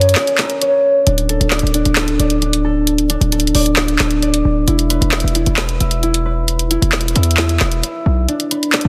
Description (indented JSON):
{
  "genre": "hip hop, trap",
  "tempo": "133 BPM",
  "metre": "4/4",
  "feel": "half-time",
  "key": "unclear",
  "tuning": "A4 = 442 Hz",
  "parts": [
    { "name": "concert harp", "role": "arpeggios", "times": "0.0-8.9 s", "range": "C#4 to E5", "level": "-20 LUFS", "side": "equal", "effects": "delay" },
    { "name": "hard-hitting 808-style bass", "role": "bass", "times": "0.0-8.9 s", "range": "D1 to F#2", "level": "-19 LUFS", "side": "equal", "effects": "none" },
    { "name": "trap drum kit", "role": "drums", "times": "0.0-8.9 s", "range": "handclaps, hi-hat, snare drum", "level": "-20 LUFS", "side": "equal", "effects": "soft clipping on snare" }
  ],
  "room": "light reverb",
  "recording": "dense, heavily limited modern master",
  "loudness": "-15 LUFS",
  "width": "mono",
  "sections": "0.0-8.9 A section",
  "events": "break 0.2-1.1; kick muted 8.3-8.7",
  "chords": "0.0 F#; 1.1 D5; 4.7 E5; 8.3 Bm"
}